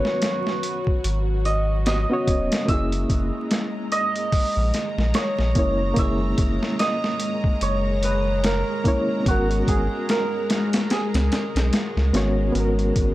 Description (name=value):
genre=trip hop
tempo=73 BPM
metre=4/4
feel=swing 58% on 16ths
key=G# minor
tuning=A4 = 437 Hz
part: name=santur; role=melody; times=0.0-13.1 s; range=F#4 to E5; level=-26 LUFS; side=right 1 dB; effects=dub echo
part: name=bright reed electric piano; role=accompaniment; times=0.0-13.1 s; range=A#3 to C#5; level=-27 LUFS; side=equal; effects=tremolo, tape echo
part: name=string machine, cellos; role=sustained chords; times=0.0-13.1 s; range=F#3 to A#5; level=-29 LUFS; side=left 1 dB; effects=ensemble chorus
part: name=boom bap sampler-style drum kit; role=drums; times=0.0-13.1 s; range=hi-hat, kick drum, snare drum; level=-24 LUFS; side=equal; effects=overdrive, small room ambience
part: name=warm sub bass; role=bass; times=1.0-13.1 s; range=D#1 to C#2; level=-23 LUFS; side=equal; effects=none
room=little or no reverb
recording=dry, gritty hardware recording, transformer saturation, vinyl crackle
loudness=-20 LUFS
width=side -16 dB against mid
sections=0.0-13.1 A section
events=none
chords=0.0 G#m11; 2.7 F#9; 9.3 G#m11